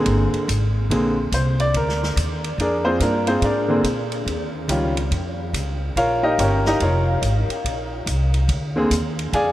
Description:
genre	jazz piano trio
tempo	142 BPM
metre	4/4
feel	swing 64% on 8ths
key	Bb mixolydian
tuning	A4 = 441 Hz
part	bright upright piano	melody	0.0-9.5 s	D3 to Ab5	-21 LUFS	equal	none
part	upright bass	bass	0.0-9.5 s	F1 to Bb2	-22 LUFS	equal	none
part	vintage drum kit	drums	0.1-9.5 s	hi-hat, kick drum, ride cymbal, snare drum	-29 LUFS	right 1 dB	none
room	wet huge ambient reverb, RT60 7.9 s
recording	in a vast, echoing space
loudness	-18 LUFS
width	side -14 dB against mid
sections	0.0-9.5 A section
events	upright piano solo 0.0-9.5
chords	0.0 Bb9; 4.3 Eb9; 7.6 Bb9

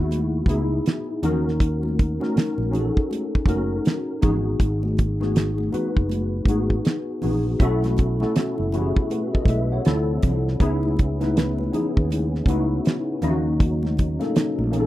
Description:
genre	R&B, neo-soul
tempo	80 BPM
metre	4/4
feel	swing 61% on 16ths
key	C# minor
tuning	A4 = 438 Hz
part	tine electric piano	accompaniment	0.0-14.9 s	A#3 to F#5	-25 LUFS	left 2 dB	ensemble chorus
part	mellow fretless electric bass	bass	0.0-14.9 s	F#1 to D#2	-24 LUFS	equal	none
part	damped 70s drum kit	drums	0.1-14.9 s	hi-hat, kick drum, snare drum	-21 LUFS	equal	none
part	congas	percussion	0.1-14.9 s	none	-30 LUFS	equal	none
part	percussive tonewheel organ	sustained chords	7.6-14.9 s	B2 to E4	-32 LUFS	right 1 dB	slow rotary speaker, chorus vibrato
room	light reverb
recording	rough home demo mix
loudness	-20 LUFS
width	side -15 dB against mid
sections	0.0-14.9 A section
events	none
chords	0.0 C#m7; 1.2 D#m7; 4.2 G#m7; 7.6 B7sus4; 9.9 Dm7; 10.6 C#m7; 13.2 D#m7

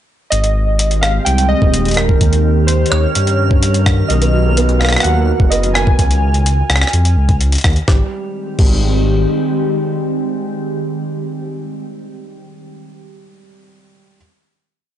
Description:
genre	IDM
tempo	127 BPM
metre	4/4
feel	straight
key	Ab major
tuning	A4 = 437 Hz
part	warbly lo-fi synth keys	melody	0.3-7.4 s	Bb4 to Ab5	-20 LUFS	right 1 dB	chorus, analog delay
part	glassy FM pad	sustained chords	0.7-11.6 s	Eb3 to Bb4	-20 LUFS	equal	ensemble chorus, built-in reverb, vintage 12-bit sampler grit
part	dark detuned saw bass	bass	0.3-9.3 s	Eb1 to G2	-14 LUFS	equal	none
part	jungle sampler-style drum kit	drums	0.3-8.7 s	crash cymbal, hi-hat, rim click, snare drum	-19 LUFS	left 1 dB	none
part	backwards swelling texture	texture	0.3-6.0 s	F6	-28 LUFS	right 6 dB	built-in reverb, sidechain pumping
part	electronic kick drum	drums	1.6-8.7 s	none	-13 LUFS	equal	none
part	felt-muted upright piano	arpeggios	4.1-14.2 s	F#3 to B3	-23 LUFS	right 4 dB	analog delay
room	digital ambience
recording	dry, gritty hardware recording, nothing above 10.3 kHz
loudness	-12 LUFS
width	side -11 dB against mid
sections	0.3-7.9 groove; 7.9-11.7 final chord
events	none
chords	0.3 Abmaj7; 2.2 Eb7; 4.1 Bmaj7; 6.0 Db; 7.9 Abmaj7

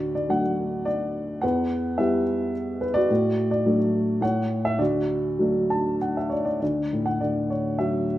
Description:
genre	classical, lyrical solo piano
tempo	96-109 BPM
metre	3/4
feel	rubato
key	D major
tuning	A4 = 445 Hz
part	dark upright piano	solo	0.0-8.2 s	D2 to A5	-22 LUFS	equal	none
room	wet recital hall reverb, RT60 1.3 s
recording	none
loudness	-22 LUFS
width	side -14 dB against mid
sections	0.0-6.6 A section; 6.6-8.2 A section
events	upright piano fill 5.4-6.6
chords	0.0 D; 1.4 Em; 3.1 D/A; 4.2 A; 4.8 D

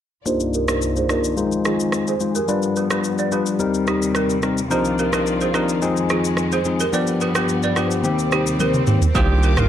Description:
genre	afrobeats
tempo	108 BPM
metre	4/4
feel	straight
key	C minor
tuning	A4 = 439 Hz
part	bell-like tine electric piano	accompaniment	0.3-9.7 s	Eb3 to C5	-20 LUFS	left 3 dB	low-pass filter
part	clear studio string section	sustained chords	0.3-9.7 s	C2 to D6	-28 LUFS	equal	low-pass filter
part	balafon	riff	0.3-9.7 s	Eb4 to D5	-24 LUFS	right 5 dB	low-pass filter, ping-pong delay
part	afro-pop drum kit	drums	0.3-9.7 s	kick drum, rim click, shaker, toms	-24 LUFS	right 1 dB	none
part	swell	sound effects	7.6-9.2 s	none	-29 LUFS	left 1 dB	none
part	clear alto saxophone	melody	9.2-9.7 s	F4 to G4	-25 LUFS	right 3 dB	none
part	hard-hitting 808-style bass	bass	9.2-9.7 s	C2	-17 LUFS	right 1 dB	none
part	agogo bells	percussion	9.2-9.3 s	none	-28 LUFS	right 10 dB	none
room	light reverb, small room ambience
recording	dark, warm production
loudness	-17 LUFS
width	side -10 dB against mid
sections	0.3-9.2 A section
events	filter sweep 0.3-9.2; swell 7.6-9.2; drum fill 8.6-9.2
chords	0.3 Cm11; 1.4 Fm7; 2.5 G7; 3.6 Eb6; 4.7 Cm11; 5.8 Fm7; 6.9 G7; 8.0 Eb6; 9.2 Cm11

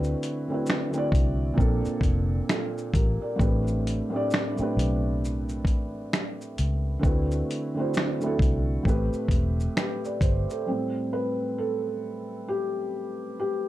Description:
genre	lo-fi hip hop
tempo	66 BPM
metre	4/4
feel	swing 62% on 16ths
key	A dorian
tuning	A4 = 440 Hz
part	felt-muted upright piano	accompaniment	0.0-13.7 s	A2 to D5	-28 LUFS	right 1 dB	low-pass filter
part	vintage muted fingered electric bass	bass	0.0-10.4 s	E1 to D2	-26 LUFS	equal	none
part	dusty soul sampler-style drum kit	drums	0.0-10.7 s	finger snaps, hi-hat, kick drum, shaker, snare drum	-25 LUFS	equal	none
room	light reverb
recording	dark, warm production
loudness	-24 LUFS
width	side -15 dB against mid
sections	0.0-10.7 A section; 10.7-13.7 B section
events	felt piano solo 10.7-13.7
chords	0.0 D13; 1.6 Bbmaj9; 3.4 Am11; 7.0 D13; 8.8 Am9; 10.7 Am7

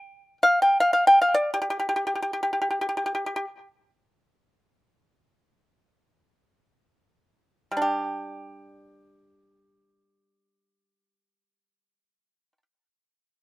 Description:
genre	chinese traditional, Chinese solo plucked strings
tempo	free time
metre	none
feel	none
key	unclear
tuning	A4 = 444 Hz
part	pipa	solo	0.0-3.4, 7.7-12.6 s	G3 to G5	-21 LUFS	equal	none
room	little or no reverb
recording	recorded outdoors, with no room sound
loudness	-21 LUFS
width	side -20 dB against mid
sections	0.0-7.8 A section; 7.8-13.4 B section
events	slowing down 1.7-7.8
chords	none

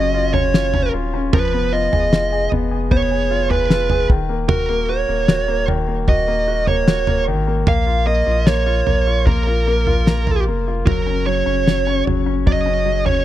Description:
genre	pop ballad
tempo	76 BPM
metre	4/4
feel	straight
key	Eb minor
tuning	A4 = 437 Hz
part	high-gain lead guitar	melody	0.0-13.2 s	Bb4 to F5	-20 LUFS	right 3 dB	distortion
part	bright concert grand piano	accompaniment	0.0-13.2 s	Eb3 to Ab4	-22 LUFS	left 3 dB	none
part	warm sub bass	bass	0.0-13.2 s	Eb1 to Bb1	-21 LUFS	equal	none
part	damped 70s drum kit	drums	0.3-13.2 s	kick drum, snare drum, toms	-18 LUFS	equal	none
room	small room ambience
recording	dark, warm production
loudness	-15 LUFS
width	side -13 dB against mid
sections	0.0-13.2 A section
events	none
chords	0.0 Gb5; 1.3 Fm7b5; 4.1 Ebm7; 7.7 Bbm; 10.9 Gb5

